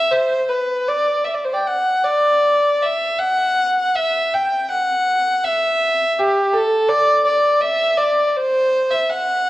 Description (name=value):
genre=celtic folk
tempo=80 BPM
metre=3/4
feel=uneven beats, rubato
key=unclear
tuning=A4 = 440 Hz
part: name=dark fiddle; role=solo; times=0.0-9.5 s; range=G4 to G5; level=-15 LUFS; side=equal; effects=none
room=moderate recital hall reverb, RT60 1.5 s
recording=worn, warbling old tape, cassette tape, warbly pitch drift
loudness=-15 LUFS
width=side -16 dB against mid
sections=0.0-9.5 A section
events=none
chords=none